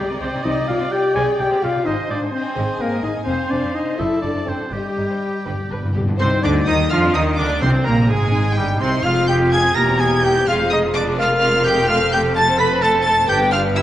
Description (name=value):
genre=quick classical-period movement for symphony orchestra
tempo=85 BPM (dotted quarters)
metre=6/8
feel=straight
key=C minor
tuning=A4 = 440 Hz
part: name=rich chamber violin section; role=melody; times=0.0-13.8 s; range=G5 to B6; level=-26 LUFS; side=equal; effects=none
part: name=clear oboe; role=second line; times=0.0-13.8 s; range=G4 to B5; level=-25 LUFS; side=right 1 dB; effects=none
part: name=mellow hollow concert flute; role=second line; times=0.0-13.8 s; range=G4 to B5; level=-26 LUFS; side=left 1 dB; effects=none
part: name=rich chamber violin section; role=second line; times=0.0-13.8 s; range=D4 to B5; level=-29 LUFS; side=left 2 dB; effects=none
part: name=clear chamber viola section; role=accompaniment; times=0.0-13.8 s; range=G3 to D5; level=-26 LUFS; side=right 1 dB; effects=none
part: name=mellow French horn section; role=sustained chords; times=0.0-13.8 s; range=G3 to B4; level=-22 LUFS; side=left 2 dB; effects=none
part: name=clear chamber cello section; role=bass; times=0.0-13.8 s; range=E2 to F3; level=-26 LUFS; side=right 2 dB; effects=none
part: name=rich chamber double bass section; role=bass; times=0.0-13.8 s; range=E1 to F2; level=-24 LUFS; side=right 2 dB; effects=none
part: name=timpani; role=percussion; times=0.4-1.1, 5.5-8.3 s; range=G2 to C3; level=-24 LUFS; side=equal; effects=none
part: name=mellow trumpet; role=stabs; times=6.2-13.8 s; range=G3 to B4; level=-24 LUFS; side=right 1 dB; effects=none
room=wet scoring stage reverb, RT60 1.6 s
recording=worn, warbling old tape, cassette tape, warbly pitch drift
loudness=-16 LUFS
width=side -12 dB against mid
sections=0.0-6.2 A section; 6.2-13.8 B section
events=timpani fill 5.5-6.2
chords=0.5 Cm; 1.9 Ab; 3.3 Fm; 4.0 D7; 4.7 Cm/G (rootless); 5.5 G5; 6.2 Cm; 6.9 Dm; 7.6 Cm; 9.1 Fm; 9.8 C7/E; 10.5 Fm; 11.9 F; 13.3 G